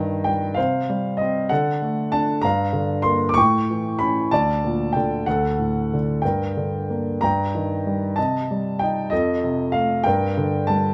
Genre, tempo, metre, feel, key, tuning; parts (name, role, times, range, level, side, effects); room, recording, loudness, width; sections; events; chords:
classical, lyrical solo piano; 64 BPM (dotted quarters); 6/8; rubato; G minor; A4 = 440 Hz
warm grand piano; solo; 0.0-10.9 s; D2 to D6; -22 LUFS; equal
light reverb; close, detailed microphones; -22 LUFS; mono
0.0-10.9 A section
0.0 Eb/G; 0.6 C5; 1.5 D; 2.4 Gm7; 3.4 A7; 4.3 Gmadd9/D; 5.3 D; 6.2 Gm; 7.2 Eb/G; 8.2 Cm; 9.1 F; 10.1 Gm